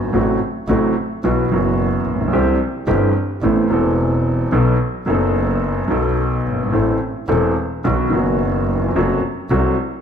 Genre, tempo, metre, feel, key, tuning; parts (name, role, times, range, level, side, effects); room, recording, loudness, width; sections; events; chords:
tango; 109 BPM; 4/4; rubato; A4 = 440 Hz
warm baby grand piano; accompaniment; 0.0-9.7 s; E1 to A4; -17 LUFS; equal
clear double bass; bass; 0.0-9.7 s; E1 to C2; -22 LUFS; right 1 dB
wet recital hall reverb, RT60 1.5 s; -16 LUFS; side -7 dB against mid
0.0-10.0 A section
0.1 F#dim/A; 1.2 Bsus4; 2.3 C6; 3.4 Amadd9; 4.5 B7; 6.7 Am; 7.9 B; 9.0 F#dim